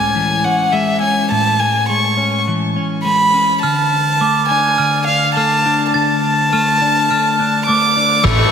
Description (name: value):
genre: post-rock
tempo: 104 BPM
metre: 4/4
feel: straight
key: unclear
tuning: A4 = 439 Hz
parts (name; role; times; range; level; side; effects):
- rich violin; melody; 0.0-8.5 s; E5 to D6; -14 LUFS; equal; slapback echo, digital delay
- clean electric guitar; arpeggios; 0.0-8.5 s; A2 to D4; -18 LUFS; left 3 dB; phaser, digital delay
- glockenspiel with hard plastic mallets; arpeggios; 3.6-8.5 s; D6 to A6; -21 LUFS; right 7 dB; slapback echo, digital delay
- glassy FM pad; sustained chords; 8.4-8.5 s; A4 to A5; -31 LUFS; equal; none
- overdriven semi-hollow guitar; riff; 8.2-8.5 s; A2 to A3; -17 LUFS; left 10 dB; slapback echo
- hollow-body short-scale picked electric bass; bass; 8.2-8.4 s; A1; -16 LUFS; equal; none
- soft-mallet drum kit; drums; 8.2-8.4 s; crash cymbal, kick drum, snare drum; -21 LUFS; right 1 dB; none
room: wet lush hall reverb, RT60 2.8 s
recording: big arena sound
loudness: -12 LUFS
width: side -7 dB against mid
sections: 0.0-8.2 A section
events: drum fill 8.2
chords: 0.0 Amaj7; 3.6 Dm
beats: 0.16 0.74 | 1.32 1.90 2.47 3.05 | 3.63 4.21 4.79 5.36 | 5.94 6.52 7.10 7.67 | 8.25